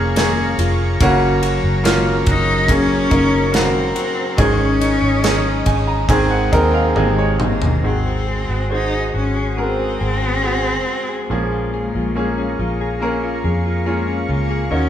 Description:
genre	pop ballad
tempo	70 BPM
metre	4/4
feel	straight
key	unclear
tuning	A4 = 440 Hz
part	bright grand piano	accompaniment	0.0-14.9 s	Ab2 to Bb5	-20 LUFS	right 1 dB	none
part	lush unison pad	sustained chords	0.0-14.9 s	Gb3 to Eb6	-27 LUFS	right 1 dB	chorus
part	direct-recorded clean electric guitar	arpeggios	0.0-14.9 s	Ab2 to Bb4	-25 LUFS	left 4 dB	none
part	vintage muted fingered electric bass	bass	0.0-14.9 s	F1 to F2	-21 LUFS	equal	none
part	modern studio drum kit	drums	0.2-7.8 s	kick drum, ride cymbal, snare drum, toms	-21 LUFS	equal	none
part	clear cello	melody	2.3-14.9 s	Ab3 to Eb4	-22 LUFS	left 2 dB	none
room	wet large studio reverb, RT60 1.4 s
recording	band playing live in one room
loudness	-15 LUFS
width	side -10 dB against mid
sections	0.0-7.8 A section; 7.8-14.9 B section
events	grand piano fill 5.2-7.8; drum fill 7.0-7.8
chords	0.0 Bbm7; 1.0 Gb; 4.4 Absus4; 6.1 Ab; 7.8 Ab7; 11.3 Bbm7

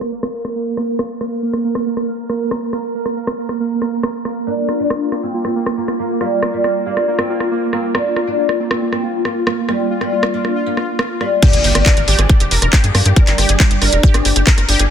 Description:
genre	psychedelic trance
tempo	138 BPM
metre	4/4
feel	straight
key	G phrygian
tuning	A4 = 440 Hz
part	pulsing gated texture	sustained chords	0.0-14.9 s	Bb3 to D5	-20 LUFS	right 2 dB	chorus, built-in reverb, sidechain pumping
part	garage drum kit	drums	0.0-14.9 s	crash cymbal, handclaps, hi-hat, rim click	-20 LUFS	equal	soft clipping on snare
part	oud	melody	4.5-14.8 s	G3 to D4	-20 LUFS	left 1 dB	phaser, sidechain pumping, digital delay
part	vowel-sweep wobble bass	second line	5.1-14.0 s	G3 to F4	-34 LUFS	left 1 dB	none
part	wide unison pluck	riff	11.4-14.9 s	G4 to Bb4	-22 LUFS	moving between left 5 dB and right 4 dB	auto-pan, cassette tape, sidechain pumping, digital delay
part	electronic kick drum	drums	11.4-14.6 s	none	-11 LUFS	equal	none
part	impact	sound effects	11.4-13.2 s	none	-25 LUFS	equal	none
part	tight sequencer bass	bass	11.5-14.9 s	F1 to G2	-15 LUFS	equal	none
room	light reverb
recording	dense, heavily limited modern master, low-pass filter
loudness	-14 LUFS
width	side -8 dB against mid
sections	0.0-11.4 A section; 11.4-14.9 B section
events	filter sweep on synth texture 0.0-11.4; filter sweep 0.0-11.4; drop 11.4-14.9; impact 11.4-13.2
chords	0.0 Gm7 (rootless); 11.4 G5

